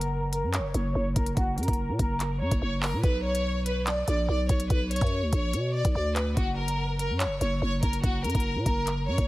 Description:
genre	hip hop, drill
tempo	144 BPM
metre	4/4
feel	half-time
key	unclear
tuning	A4 = 442 Hz
part	rich studio violin section	melody	0.0-9.2 s	F#4 to D5	-30 LUFS	equal	low-pass filter, tape echo
part	growling 808-style bass	bass	0.0-9.3 s	F#1 to B2	-28 LUFS	equal	none
part	drill drum kit	drums	0.0-9.3 s	handclaps, hi-hat, kick drum	-28 LUFS	equal	none
room	little or no reverb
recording	heavily compressed radio sound, multiband compression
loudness	-25 LUFS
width	side -18 dB against mid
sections	0.0-9.3 A section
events	filter sweep on violin section 0.0-3.0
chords	0.0 F#; 3.0 Bmadd9; 6.4 F#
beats	0.12 0.54 0.95 | 1.37 1.78 2.20 2.62 | 3.04 3.45 3.87 4.29 | 4.70 5.12 5.54 5.95 | 6.37 6.79 7.20 7.62 | 8.04 8.45 8.87

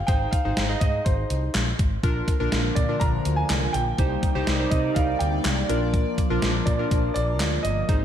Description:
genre	synth-pop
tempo	123 BPM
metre	4/4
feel	straight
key	unclear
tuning	A4 = 440 Hz
part	warm grand piano	melody	0.0-8.0 s	C5 to Bb5	-29 LUFS	right 2 dB	ping-pong delay
part	warm analog keys	accompaniment	0.1-8.0 s	D4 to Eb5	-30 LUFS	left 1 dB	chorus
part	woody fretless electric bass	bass	0.1-8.0 s	G1 to C3	-26 LUFS	equal	ensemble chorus
part	gated 80s digital drum machine	drums	0.1-8.0 s	handclaps, hi-hat, kick drum, snare drum	-25 LUFS	equal	gated reverb, gated reverb snare
part	chorused pulse-width pad	sustained chords	2.0-8.0 s	C3 to D5	-29 LUFS	equal	phaser
room	moderate lush hall reverb, RT60 2.2 s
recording	dreamy mix soaked in reverb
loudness	-21 LUFS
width	side -10 dB against mid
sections	0.0-8.0 A section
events	none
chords	0.1 Ab; 2.0 Bb; 4.0 Cm7; 5.7 Bb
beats	| 0.08 0.57 1.06 1.55 | 2.03 2.52 3.01 3.50 | 3.98 4.47 4.96 5.45 | 5.94 6.42 6.91 7.40 | 7.89

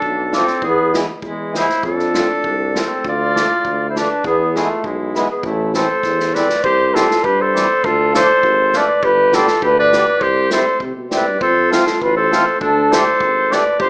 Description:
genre	alpine folk, alpine dance band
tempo	100 BPM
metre	2/4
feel	straight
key	A minor, C major from 6.6 s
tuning	A4 = 438 Hz
part	warm flugelhorn	melody	0.0-13.9 s	G#3 to D5	-19 LUFS	equal	none
part	bright clarinet	second line	0.0-13.9 s	D4 to D5	-23 LUFS	equal	none
part	warm tuba	bass	0.0-13.9 s	G1 to C3	-25 LUFS	equal	none
part	unplugged drum kit	drums	0.0-13.9 s	hi-hat, kick drum, snare drum	-27 LUFS	equal	none
part	mellow accordion	accompaniment	0.3-13.6 s	E3 to G4	-24 LUFS	equal	none
room	moderate recital hall reverb, RT60 1.5 s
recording	recorded in a church or concert hall, small speaker sound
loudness	-16 LUFS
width	mono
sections	0.0-6.6 A section; 6.6-13.9 B section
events	drum fill 6.0-6.6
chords	0.0 Dm; 0.6 E; 1.8 F; 3.1 Dm; 4.2 E; 5.4 Am; 6.6 C; 7.8 Dm; 9.0 G; 10.2 C; 11.4 F; 12.6 Dsus4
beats	0.03 | 0.62 1.23 | 1.84 2.45 | 3.05 3.65 | 4.24 4.84 | 5.43 6.03 | 6.63 7.23 | 7.83 8.43 | 9.03 9.62 | 10.21 10.81 | 11.41 12.02 | 12.61 13.20 | 13.79

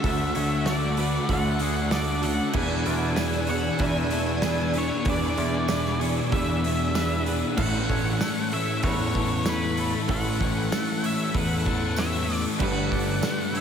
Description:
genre	rock, shoegaze and dream pop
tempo	96 BPM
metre	4/4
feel	straight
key	A major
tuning	A4 = 437 Hz
part	octave-fuzz lead guitar	melody	0.0-13.6 s	B4 to G#5	-31 LUFS	equal	distortion, analog delay
part	string machine, violins	sustained chords	0.0-7.5 s	D4 to E6	-33 LUFS	right 1 dB	ensemble chorus
part	twangy electric guitar	arpeggios	0.0-13.6 s	A3 to D5	-35 LUFS	right 2 dB	lush chorus, analog delay
part	direct-recorded clean electric guitar	riff	0.0-13.6 s	A2 to B4	-30 LUFS	right 8 dB	reverse reverb
part	thick fuzz guitar	riff	0.0-13.6 s	E2 to D4	-29 LUFS	left 8 dB	distortion, analog chorus
part	growling picked electric bass	bass	0.0-13.2 s	G1 to E2	-28 LUFS	equal	overdrive
part	loose indie drum kit	drums	0.0-13.6 s	crash cymbal, hi-hat, kick drum, snare drum	-30 LUFS	right 1 dB	none
part	tambourine	percussion	0.7-13.4 s	none	-41 LUFS	right 10 dB	none
room	moderate huge ambient reverb, RT60 7.6 s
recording	dreamy mix soaked in reverb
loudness	-22 LUFS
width	side -7 dB against mid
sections	0.0-7.6 A section; 7.6-13.6 B section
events	none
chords	0.0 Dmaj7; 2.5 E7; 7.6 A; 12.6 Gadd9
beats	| 0.04 0.67 1.29 1.92 | 2.55 3.17 3.80 4.43 | 5.06 5.69 6.32 6.95 | 7.57 8.20 8.83 9.46 | 10.09 10.72 11.35 11.97 | 12.60 13.23

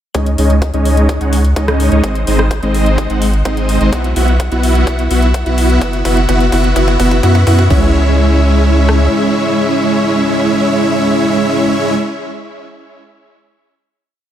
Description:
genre	EDM, festival progressive house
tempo	127 BPM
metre	4/4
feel	straight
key	C# minor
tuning	A4 = 440 Hz
part	dense compressed supersaw	riff	0.1-11.9 s	G#3 to F#5	-13 LUFS	equal	sidechain pumping, low-pass filter, tape echo
part	saturated sub bass	bass	0.1-9.1 s	F#1 to F#2	-13 LUFS	equal	sidechain pumping
part	big-room dance drum kit	drums	0.1-9.0 s	kick drum, rim click	-19 LUFS	equal	overdrive, high-pass filter on kick, studio reverb, high-pass filter on snare
part	big-room dance drum kit	drums	0.1-7.8 s	crash cymbal, hi-hat, rim click	-24 LUFS	left 1 dB	studio reverb
room	light reverb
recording	none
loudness	-10 LUFS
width	side -10 dB against mid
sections	0.1-7.7 build; 7.7-11.5 final chord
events	build-up 0.1-7.7; filter sweep on supersaw synth 0.1-7.7; drum fill 3.9-7.7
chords	0.1 C#sus2; 2.0 G#; 3.9 Bsus4; 5.8 F#7sus4; 7.7 C#m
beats	| 0.15 0.62 1.09 1.56 | 2.04 2.51 2.98 3.45 | 3.93 4.40 4.87 5.34 | 5.82 6.29 6.76 7.23 | 7.71 8.18 8.65 9.12 | 9.60 10.07 10.54 11.01

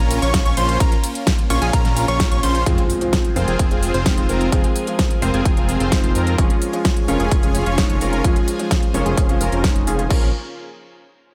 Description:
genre	EDM, festival progressive house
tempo	129 BPM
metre	4/4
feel	straight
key	Bb minor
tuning	A4 = 440 Hz
part	supersaw pad	sustained chords	0.0-10.3 s	Bb3 to Ab5	-33 LUFS	equal	phaser, sidechain pumping
part	plucky unison lead	arpeggios	0.0-2.6 s	Ab5 to Db6	-27 LUFS	equal	sidechain pumping, tape echo
part	dense compressed supersaw	riff	0.0-10.3 s	C4 to Db5	-26 LUFS	equal	sidechain pumping, low-pass filter, tape echo
part	fat analog bass	bass	0.0-10.3 s	F1 to F2	-25 LUFS	equal	sidechain pumping
part	pop drum kit	drums	0.1-10.2 s	crash cymbal, hi-hat, ride cymbal, snare drum	-28 LUFS	equal	small room ambience
part	electronic kick drum	drums	0.3-10.2 s	none	-20 LUFS	equal	overdrive, small room ambience
part	clear baby grand piano	accompaniment	2.7-10.3 s	F3 to Bb4	-27 LUFS	equal	sidechain pumping, tape echo
part	impact	sound effects	2.7-4.5 s	none	-34 LUFS	equal	none
room	light reverb, digital ambience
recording	none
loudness	-18 LUFS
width	mono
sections	0.0-2.7 A section; 2.7-10.1 B section; 10.1-11.3 C section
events	drop 0.0-2.7; impact 2.7-4.5; filter sweep on supersaw synth 2.7-10.1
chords	0.0 Bbm; 2.7 Fm; 6.4 Db/F; 10.1 Bbm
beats	0.34 | 0.80 1.27 1.73 2.20 | 2.66 3.13 3.60 4.06 | 4.53 4.99 5.46 5.92 | 6.38 6.85 7.32 7.78 | 8.25 8.71 9.18 9.64 | 10.11

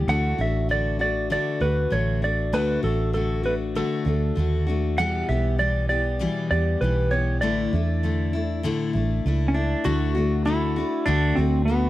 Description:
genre	folk rock and heartland rock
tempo	98 BPM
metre	4/4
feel	straight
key	D major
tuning	A4 = 440 Hz
part	picked steel-string acoustic guitar	accompaniment	0.0-11.9 s	E2 to G4	-26 LUFS	left 4 dB	none
part	vintage muted fingered electric bass	bass	0.0-11.9 s	A1 to E2	-24 LUFS	right 1 dB	none
part	clean lap steel guitar	melody	0.1-11.9 s	B3 to F#5	-26 LUFS	right 1 dB	none
room	small room ambience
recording	dry, close 1970s-style studio recording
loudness	-21 LUFS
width	side -15 dB against mid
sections	0.0-9.9 A section; 9.9-11.9 B section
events	none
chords	0.1 D; 5.0 Em; 7.4 Asus4; 9.9 D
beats	| 0.08 0.69 1.31 1.92 | 2.53 3.14 3.76 4.37 | 4.98 5.59 6.20 6.81 | 7.42 8.03 8.64 9.25 | 9.86 10.46 11.07 11.68

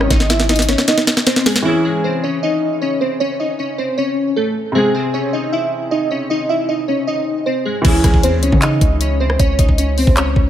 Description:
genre	hip hop, trap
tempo	155 BPM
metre	4/4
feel	half-time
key	C# harmonic minor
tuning	A4 = 440 Hz
part	glassy digital keys	melody	0.0-10.5 s	E3 to E5	-17 LUFS	equal	chorus, low-pass filter, tape echo
part	felt-muted upright piano	accompaniment	0.0-10.5 s	B#2 to G#4	-24 LUFS	equal	low-pass filter
part	long sustained 808-style bass	bass	0.0-0.8, 7.8-10.5 s	G#1 to C#3	-17 LUFS	equal	none
part	trap drum kit	drums	0.0-1.6, 7.8-10.5 s	crash cymbal, handclaps, hi-hat, kick drum, rim click, snare drum	-15 LUFS	equal	none
room	light reverb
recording	none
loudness	-14 LUFS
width	side -11 dB against mid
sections	0.0-1.7 A section; 1.7-7.8 B section; 7.8-10.5 C section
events	drum fill 0.1-1.7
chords	0.0 G#; 1.7 C#m; 4.8 G#; 7.8 C#m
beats	| 0.10 0.49 0.88 1.27 | 1.65 2.04 2.43 2.81 | 3.20 3.59 3.98 4.36 | 4.75 5.14 5.52 5.91 | 6.30 6.69 7.07 7.46 | 7.85 8.23 8.62 9.01 | 9.39 9.78 10.17

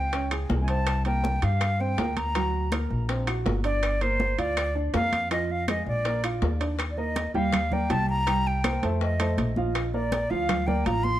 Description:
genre	Afro-Cuban jazz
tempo	162 BPM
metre	4/4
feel	straight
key	unclear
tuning	A4 = 439 Hz
part	breathy silver concert flute	melody	0.0-11.2 s	C5 to C6	-29 LUFS	equal	tape echo
part	warm baby grand piano	accompaniment	0.0-11.2 s	F3 to G#5	-30 LUFS	right 2 dB	none
part	upright bass	bass	0.0-11.2 s	G1 to G2	-28 LUFS	equal	none
part	bongos	percussion	0.1-11.2 s	none	-37 LUFS	left 7 dB	none
part	congas	percussion	0.1-11.2 s	none	-33 LUFS	equal	none
part	timbales	percussion	0.1-11.0 s	none	-34 LUFS	right 4 dB	none
part	claves	percussion	0.3-10.7 s	none	-37 LUFS	left 6 dB	none
room	light reverb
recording	none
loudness	-23 LUFS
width	side -13 dB against mid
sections	0.0-6.8 A section; 6.8-11.2 B section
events	none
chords	0.1 C#5; 0.9 Csus2; 2.4 Daug7; 3.8 Gm7; 5.3 Fm; 6.1 Bb; 6.8 Ebadd9; 8.3 C7sus4; 9.0 F7; 9.8 Bb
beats	0.13 0.50 | 0.87 1.24 1.61 1.98 | 2.35 2.72 3.09 3.46 | 3.83 4.20 4.57 4.94 | 5.31 5.68 6.05 6.42 | 6.79 7.16 7.53 7.90 | 8.27 8.64 9.01 9.38 | 9.75 10.12 10.49 10.86

